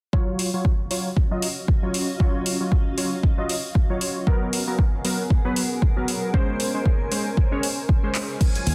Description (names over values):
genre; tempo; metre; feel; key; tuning
deep house; 116 BPM; 4/4; swing 57% on 16ths; Eb minor; A4 = 441 Hz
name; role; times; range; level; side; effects
warm analog keys; stabs; 0.1-8.4 s; Gb3 to Eb5; -30 LUFS; equal; chorus, sidechain pumping, low-pass filter, dub echo
electronic kick drum; drums; 0.1-8.5 s; none; -22 LUFS; equal; overdrive
granular cloud pad; texture; 1.0-8.7 s; Gb3 to Ab5; -35 LUFS; equal; built-in reverb, sidechain pumping
deep house drum kit; drums; 0.4-8.7 s; crash cymbal, handclaps, hi-hat; -30 LUFS; equal; overdrive
warm analog pad; sustained chords; 4.3-8.7 s; Gb3 to Ab5; -35 LUFS; equal; chorus, sidechain pumping
string machine, violins; texture; 8.4-8.7 s; Ab5; -36 LUFS; equal; ensemble chorus, sidechain pumping
fingered electric bass; bass; 8.7 s; Eb2; -23 LUFS; equal; tube saturation, sidechain pumping
room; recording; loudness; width
little or no reverb; dense, heavily limited modern master; -23 LUFS; mono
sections
0.1-8.4 A section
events
drum fill 8.1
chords
0.1 Ebm9; 4.3 Abm9; 6.3 Bbm9